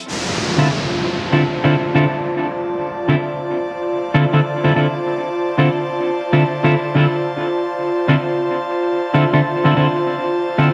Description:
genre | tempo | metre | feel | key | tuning
glitch hop | 96 BPM | 4/4 | swing 62% on 16ths | D minor | A4 = 439 Hz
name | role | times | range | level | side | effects
boom bap sampler-style drum kit | drums | 0.1-10.7 s | none | barely audible | none | none
downlifter | sound effects | 0.1-5.1 s | none | -26 LUFS | equal | none
airy breathy pad | texture | 0.4-10.7 s | F4 to A5 | -22 LUFS | equal | chorus
semi-hollow electric guitar | stabs | 0.6-10.7 s | D3 to A4 | -19 LUFS | equal | lush chorus, low-pass filter, tape echo
room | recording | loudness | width
wet plate reverb, RT60 1.3 s | dreamy mix soaked in reverb | -18 LUFS | mono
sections
0.1-10.7 A section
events
none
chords
0.1 Dm7

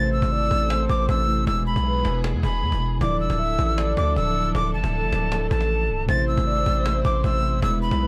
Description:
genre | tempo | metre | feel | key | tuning
hip hop, trap | 156 BPM | 4/4 | half-time | A harmonic minor | A4 = 440 Hz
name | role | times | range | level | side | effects
jazz flute | melody | 0.0-8.1 s | A5 to A6 | -28 LUFS | equal | none
breathy flute-like synth lead | second line | 0.0-8.1 s | A4 to E5 | -32 LUFS | equal | chorus, digital delay
muted felt-like synth keys | accompaniment | 0.0-8.1 s | B2 to E4 | -31 LUFS | equal | chorus
muted studio string section | sustained chords | 0.0-8.1 s | E3 to C5 | -36 LUFS | equal | none
distorted 808-style bass | bass | 0.0-8.1 s | C1 to E2 | -26 LUFS | equal | distortion
cajon | drums | 0.1-8.1 s | none | -35 LUFS | equal | none
room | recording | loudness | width
studio reverb | none | -22 LUFS | mono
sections
0.0-8.1 A section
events
none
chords
0.0 Am; 1.5 E; 3.0 Dmadd9; 6.1 Am

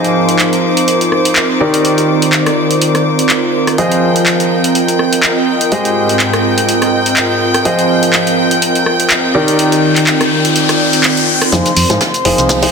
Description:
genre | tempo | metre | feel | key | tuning
piano house | 124 BPM | 4/4 | swing 55% on 16ths | F dorian | A4 = 437 Hz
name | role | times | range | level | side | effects
rich chamber string section | sustained chords | 0.0-12.7 s | C5 to G6 | -18 LUFS | equal | sidechain pumping
clear baby grand piano | riff | 0.0-12.7 s | Eb3 to Eb5 | -15 LUFS | equal | sidechain pumping, low-pass filter, digital delay
punchy analog drum machine | drums | 0.0-12.7 s | handclaps, hi-hat, rim click, shaker | -15 LUFS | equal | none
airy breathy pad | texture | 0.0-12.7 s | Ab2 to Eb5 | -15 LUFS | right 1 dB | chorus, sidechain pumping
riser | sound effects | 8.6-12.7 s | none | -19 LUFS | left 4 dB | none
solid FM bass | bass | 11.5-12.7 s | F1 to Ab2 | -17 LUFS | equal | sidechain pumping
electronic kick drum | drums | 11.5-12.6 s | none | -21 LUFS | equal | high-pass filter on kick
jazz brush drum kit | drums | 11.5-12.7 s | hi-hat, snare drum | -23 LUFS | right 2 dB | sidechain pumping on hats, high-pass filter on hats, high-pass filter on snare, high-pass filter on room
room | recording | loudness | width
moderate lush hall reverb, RT60 1.7 s | dense, heavily limited modern master | -10 LUFS | side -5 dB against mid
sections
0.0-11.5 A section; 11.5-12.7 B section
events
riser 8.6-11.5, 11.5-12.7; build-up 11.5-12.7; filter sweep on grand piano 11.5-12.7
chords
0.0 Fm7; 1.6 Ebmaj7; 3.8 Fm7; 5.7 Abmaj7; 7.7 Fm7; 9.3 Ebmaj7; 11.5 Fm7

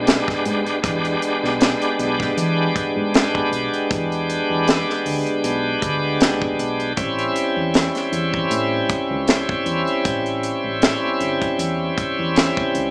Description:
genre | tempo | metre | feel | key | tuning
straight-eighth soul blues | 78 BPM | 4/4 | swing 54% on 16ths | unclear | A4 = 441 Hz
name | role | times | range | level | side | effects
bright tonewheel organ | accompaniment | 0.0-12.9 s | G3 to G4 | -22 LUFS | equal | slow rotary speaker, overdrive
fingered electric bass | bass | 0.0-12.9 s | G1 to E3 | -30 LUFS | equal | none
tight funk drum kit | drums | 0.1-12.9 s | hi-hat, kick drum, snare drum | -23 LUFS | equal | none
room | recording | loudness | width
moderate large studio reverb, RT60 1.3 s | band playing live in one room, small speaker sound | -20 LUFS | mono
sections
0.0-12.9 A section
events
none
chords
0.0 E7#9; 7.0 A7#9

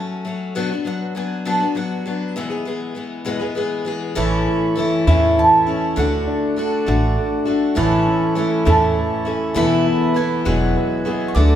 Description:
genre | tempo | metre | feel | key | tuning
acoustic folk duo or small band | 67 BPM (dotted quarters) | 6/8 | straight | A major | A4 = 440 Hz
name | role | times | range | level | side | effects
mandolin | melody | 0.0-11.6 s | E5 to D6 | -21 LUFS | right 2 dB | none
picked steel-string acoustic guitar | accompaniment | 0.0-11.6 s | E2 to G#4 | -20 LUFS | left 3 dB | none
hand-pumped harmonium | sustained chords | 4.2-11.6 s | E4 to A5 | -28 LUFS | right 1 dB | none
warm upright piano | arpeggios | 4.2-11.6 s | E3 to A4 | -22 LUFS | right 6 dB | none
upright bass | bass | 4.2-11.6 s | E1 to E2 | -19 LUFS | equal | none
room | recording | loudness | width
wet recital hall reverb, RT60 1.4 s | recorded in a church or concert hall | -17 LUFS | side -10 dB against mid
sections
0.0-4.2 A section; 4.2-11.6 B section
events
none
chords
0.0 F#m; 0.6 Bm; 2.4 E; 4.2 A; 6.0 D; 7.8 A; 9.6 Esus4; 10.5 Eadd9

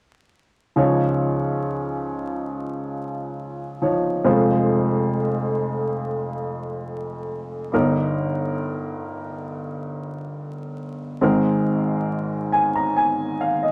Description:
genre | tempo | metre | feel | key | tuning
acoustic folk-pop ballad | 69 BPM | 4/4 | straight | unclear | A4 = 440 Hz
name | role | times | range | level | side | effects
clear upright piano | solo | 0.8-13.7 s | F1 to Bb5 | -23 LUFS | equal | none
room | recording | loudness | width
wet studio reverb, RT60 0.5 s | vinyl crackle | -23 LUFS | mono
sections
0.8-13.7 A section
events
upright piano fill 12.1-13.7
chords
0.8 Dbadd9; 4.3 Fm; 7.7 Eb/G; 11.2 Abadd9

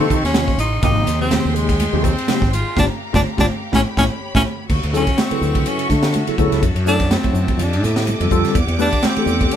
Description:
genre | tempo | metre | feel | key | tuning
electric jazz fusion | 124 BPM | 4/4 | swing 56% on 16ths | D major from 4.7 s | A4 = 439 Hz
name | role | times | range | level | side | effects
clear tenor saxophone | melody | 0.0-9.6 s | Ab3 to F4 | -22 LUFS | left 1 dB | none
bright tine electric piano | accompaniment | 0.0-9.6 s | C3 to B4 | -22 LUFS | left 1 dB | medium stereo tremolo, phaser
rich symphonic string section | sustained chords | 0.0-9.6 s | Ab3 to D6 | -27 LUFS | left 1 dB | none
fretless electric bass | bass | 0.0-9.5 s | G1 to Eb3 | -20 LUFS | equal | none
crisp fusion drum kit | drums | 0.1-9.6 s | crash cymbal, hi-hat, kick drum, ride cymbal, snare drum | -21 LUFS | equal | none
congas | percussion | 0.1-9.6 s | none | -25 LUFS | right 2 dB | none
room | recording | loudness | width
light reverb | band playing live in one room | -15 LUFS | side -10 dB against mid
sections
0.0-4.7 A section; 4.7-9.6 B section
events
band accent 2.8-4.7; drum fill 3.7-4.7; tenor saxophone solo 4.7-9.6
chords
0.0 Eb13; 0.8 Abmaj7; 2.8 Gm7; 3.7 A9; 4.7 Dmaj9; 6.6 F#m7b5; 7.6 F13; 8.6 Em9

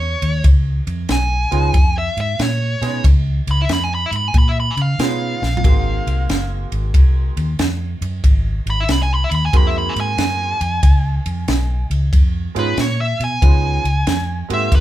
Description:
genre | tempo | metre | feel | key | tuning
electric blues shuffle | 92 BPM | 4/4 | swing 66% on 8ths | Db mixolydian | A4 = 440 Hz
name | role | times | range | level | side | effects
dark smooth lead guitar | melody | 0.0-14.8 s | Cb5 to Cb6 | -22 LUFS | equal | overdrive
vintage muted fingered electric bass | bass | 0.0-14.8 s | Gb1 to Db3 | -19 LUFS | equal | none
compact cocktail drum kit | drums | 0.2-14.8 s | kick drum, ride cymbal, snare drum, toms | -15 LUFS | equal | none
bright upright piano | accompaniment | 1.5-14.8 s | Ab3 to Ab4 | -25 LUFS | right 5 dB | none
room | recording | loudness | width
wet small room reverb, RT60 0.5 s | band playing live in one room | -15 LUFS | side -14 dB against mid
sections
0.0-14.8 A section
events
lead electric guitar solo 0.0-14.8; drum fill 5.3-5.6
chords
0.4 Db9; 5.6 Ab9; 10.8 Db9

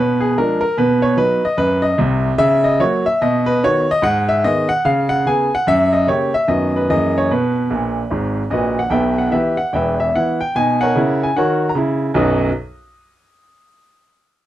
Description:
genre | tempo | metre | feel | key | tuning
jazz, stride piano | 147 BPM | 4/4 | swing 61% on 8ths | B major | A4 = 438 Hz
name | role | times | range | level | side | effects
clear grand piano | solo | 0.0-12.5 s | E1 to D#6 | -14 LUFS | equal | none
room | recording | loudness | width
light reverb | dry, close 1970s-style studio recording | -14 LUFS | side -13 dB against mid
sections
0.0-8.9 A section; 8.9-12.2 B section; 12.2-13.8 C section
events
grand piano fill 7.7-8.9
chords
0.0 Bdim7; 0.8 B; 2.4 F#/C#; 3.2 B; 4.0 G#m; 4.8 C#5; 5.7 F#; 6.5 B/F#; 6.9 F#13; 7.3 B5; 8.9 Em/B; 10.5 F#7/B; 12.2 B

